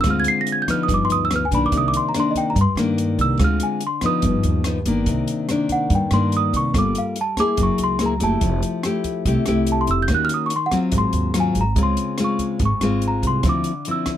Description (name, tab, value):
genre	bossa nova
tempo	143 BPM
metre	4/4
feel	straight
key	C minor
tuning	A4 = 440 Hz
part	small celesta	melody	0.0-14.1 s	Eb5 to C7	-22 LUFS	right 1 dB	none
part	nylon-string guitar	accompaniment	0.0-14.2 s	G2 to A4	-21 LUFS	left 3 dB	none
part	upright bass	bass	0.0-13.6 s	F1 to G2	-22 LUFS	right 1 dB	none
part	compact cocktail drum kit	drums	0.0-14.2 s	hi-hat, kick drum, rim click	-26 LUFS	right 1 dB	none
room	little or no reverb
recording	close, detailed microphones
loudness	-18 LUFS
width	side -11 dB against mid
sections	0.0-5.1 A section; 5.1-14.2 A section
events	celesta solo 0.0-5.1, 5.1-14.2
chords	0.0 Dm7b5; 0.9 G7b13; 1.7 Cm9; 3.4 Dm7b5; 4.2 G7alt; 5.1 Cm9; 6.7 Gm9; 7.6 F#9; 8.4 Fmaj9; 10.1 Ebm7; 10.9 Ab6; 11.8 Dbmaj7; 13.4 Dm9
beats	| 0.05 0.47 0.89 1.30 | 1.72 2.14 2.56 2.98 | 3.40 3.82 4.24 4.66 | 5.07 5.49 5.91 6.33 | 6.75 7.17 7.58 8.00 | 8.42 8.84 9.26 9.68 | 10.10 10.52 10.93 11.35 | 11.77 12.19 12.61 13.03 | 13.44 13.86